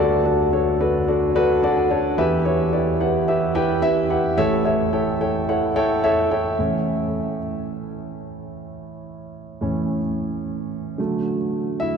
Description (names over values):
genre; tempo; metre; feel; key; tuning
pop; 109 BPM; 4/4; straight; unclear; A4 = 438 Hz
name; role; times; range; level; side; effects
dark grand piano; solo; 0.0-12.0 s; A1 to A5; -19 LUFS; equal; none
room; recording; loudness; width
wet cathedral reverb, RT60 5.0 s; recorded in a church or concert hall; -19 LUFS; side -6 dB against mid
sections
0.0-6.6 A section; 6.6-11.0 B section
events
grand piano fill 1.4-2.2; grand piano solo 6.6-11.0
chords
0.0 D; 2.2 Em; 4.4 A; 11.0 D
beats
0.53 1.08 1.63 | 2.18 2.73 3.28 3.83 | 4.38 4.93 5.48 6.03 | 6.58 7.13 7.69 8.24 | 8.79 9.34 9.89 10.44 | 10.99 11.54